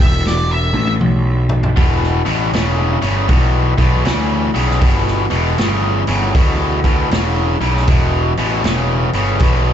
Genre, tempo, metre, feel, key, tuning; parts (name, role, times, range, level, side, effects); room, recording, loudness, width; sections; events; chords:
blues rock power trio and southern rock; 78 BPM; 4/4; swing 64% on 8ths; E minor; A4 = 440 Hz
octave-fuzz lead guitar; melody; 0.0-0.9 s; D5 to E5; -22 LUFS; left 1 dB; distortion, slapback echo, digital delay
overdriven tonewheel organ; sustained chords; 0.0-9.7 s; E3 to D5; -30 LUFS; right 3 dB
fuzz picked electric bass; bass; 0.0-9.7 s; E1 to D2; -17 LUFS; equal; overdrive
vintage drum kit; drums; 0.3-9.6 s; hi-hat, kick drum, snare drum, toms; -18 LUFS; equal
biting overdriven guitar; riff; 1.8-9.7 s; E2 to C#3; -18 LUFS; left 1 dB; slapback echo
small room ambience; live gig heard through the venue's PA, club reverb, nothing above 7.9 kHz; -13 LUFS; side -9 dB against mid
0.0-1.8 A section; 1.8-9.7 B section
lead electric guitar solo 0.0-1.8; drum fill 0.2-1.8
0.0 Em